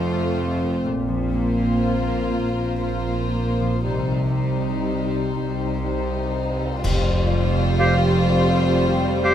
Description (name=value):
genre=cinematic, emotional film score for orchestra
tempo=41 BPM (dotted quarters)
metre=6/8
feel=rubato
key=unclear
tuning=A4 = 439 Hz
part: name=warm symphonic violin section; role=melody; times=0.0-9.3 s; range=C5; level=-30 LUFS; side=left 3 dB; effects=none
part: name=warm chamber violin section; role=second line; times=0.0-9.3 s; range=Eb4 to F4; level=-30 LUFS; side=left 3 dB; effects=none
part: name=dark symphonic viola section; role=accompaniment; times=0.0-9.3 s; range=G3 to Bb3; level=-29 LUFS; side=right 1 dB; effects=none
part: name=mellow French horn section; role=sustained chords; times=0.0-9.3 s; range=C4 to A4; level=-29 LUFS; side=left 2 dB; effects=none
part: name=concert harp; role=arpeggios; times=0.0-9.3 s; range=F2 to C5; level=-30 LUFS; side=left 11 dB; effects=none
part: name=rich symphonic double bass section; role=bass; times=0.0-9.3 s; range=F1 to C2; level=-25 LUFS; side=right 2 dB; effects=none
part: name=warm symphonic cello section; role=bass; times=0.0-9.3 s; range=F2 to C3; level=-26 LUFS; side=right 2 dB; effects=none
part: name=cymbal swell, clash cymbals and concert bass drum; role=percussion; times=3.9-8.7 s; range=none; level=-29 LUFS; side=equal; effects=none
part: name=bright oboe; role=second line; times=7.8-9.3 s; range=C5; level=-23 LUFS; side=right 1 dB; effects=none
part: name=clear clarinet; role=second line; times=7.8-9.3 s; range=G4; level=-25 LUFS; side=left 2 dB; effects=none
part: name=mellow large flute ensemble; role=second line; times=7.8-9.3 s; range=F5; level=-28 LUFS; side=right 3 dB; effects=none
room=light reverb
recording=close, detailed microphones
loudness=-19 LUFS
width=side -10 dB against mid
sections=0.0-6.8 A section; 6.8-9.3 B section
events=band accent 6.8-7.8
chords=0.0 F; 0.8 Bbsus2; 3.8 Cm; 6.8 Fsus2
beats=| 0.84 2.32 | 3.85 5.35 | 6.83 8.26